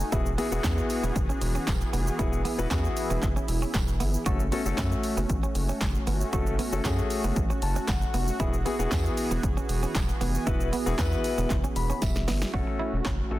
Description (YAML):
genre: dance-pop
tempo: 116 BPM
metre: 4/4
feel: straight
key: unclear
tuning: A4 = 436 Hz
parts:
  - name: warm baby grand piano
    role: accompaniment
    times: 0.0-13.4 s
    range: A3 to B5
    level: -31 LUFS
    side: left 4 dB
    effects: sidechain pumping
  - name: warm analog pad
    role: sustained chords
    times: 0.0-13.4 s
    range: E3 to G#4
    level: -35 LUFS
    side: right 1 dB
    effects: chorus, sidechain pumping
  - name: round analog bass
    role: bass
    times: 0.0-13.4 s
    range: E1 to F#2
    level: -29 LUFS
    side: equal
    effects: sidechain pumping
  - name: punchy analog drum machine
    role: drums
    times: 0.0-13.2 s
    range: handclaps, hi-hat, kick drum, shaker, snare drum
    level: -29 LUFS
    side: equal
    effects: none
  - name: clean electric guitar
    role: riff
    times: 0.1-13.3 s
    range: B3 to F#4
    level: -36 LUFS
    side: right 5 dB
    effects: lush chorus
  - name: tambourine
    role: percussion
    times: 0.6-12.1 s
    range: none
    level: -45 LUFS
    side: right 8 dB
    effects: none
room: digital ambience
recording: dense, heavily limited modern master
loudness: -24 LUFS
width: side -16 dB against mid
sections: 0.0-12.5 A section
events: grand piano fill 7.4-8.4, 11.5-12.5; drum fill 12.0-12.5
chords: 0.1 Eadd9; 4.3 F#m; 8.4 Eadd9; 12.5 F#m